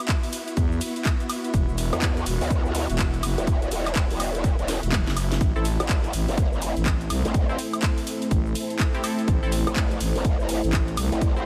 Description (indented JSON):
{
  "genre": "bass house",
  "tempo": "124 BPM",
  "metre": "4/4",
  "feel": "swing 62% on 16ths",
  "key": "A dorian",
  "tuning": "A4 = 440 Hz",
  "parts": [
    { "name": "warm studio string section", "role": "texture", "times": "0.0-11.5 s", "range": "B3 to E5", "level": "-35 LUFS", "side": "equal", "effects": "sidechain pumping" },
    { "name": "electronic kick drum", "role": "drums", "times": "0.1-11.3 s", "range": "none", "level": "-26 LUFS", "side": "equal", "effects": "overdrive, small room reverb" },
    { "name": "house drum kit", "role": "drums", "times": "0.1-11.4 s", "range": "handclaps, hi-hat, ride cymbal, shaker, snare drum, toms, woodblock", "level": "-33 LUFS", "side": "equal", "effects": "overdrive, small room reverb" },
    { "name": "growling FM bass", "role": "bass", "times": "0.6-11.1 s", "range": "E1 to E2", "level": "-28 LUFS", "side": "equal", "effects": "overdrive, sidechain pumping" },
    { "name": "growl bass", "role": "bass", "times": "1.9-11.4 s", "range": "E1 to E2", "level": "-30 LUFS", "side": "equal", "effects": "chorus, tube saturation, sidechain pumping" },
    { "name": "dark analog pad", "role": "sustained chords", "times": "6.3-11.5 s", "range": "A3 to C5", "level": "-33 LUFS", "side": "equal", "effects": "chorus, sidechain pumping" },
    { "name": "band-passed chord stab", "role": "stabs", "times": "5.6-11.5 s", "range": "C4 to C5", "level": "-36 LUFS", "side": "equal", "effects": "chorus, sidechain pumping, analog delay" }
  ],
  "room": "light reverb",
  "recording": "none",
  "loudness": "-24 LUFS",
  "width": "mono",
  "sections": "0.0-11.5 A section",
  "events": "drum fill 4.7-5.4",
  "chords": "0.0 Esus2; 5.4 Am",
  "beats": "0.09 0.57 1.05 | 1.54 2.02 2.50 2.99 | 3.47 3.96 4.44 4.92 | 5.41 5.89 6.38 6.86 | 7.34 7.83 8.31 8.79 | 9.28 9.76 10.25 10.73 | 11.21"
}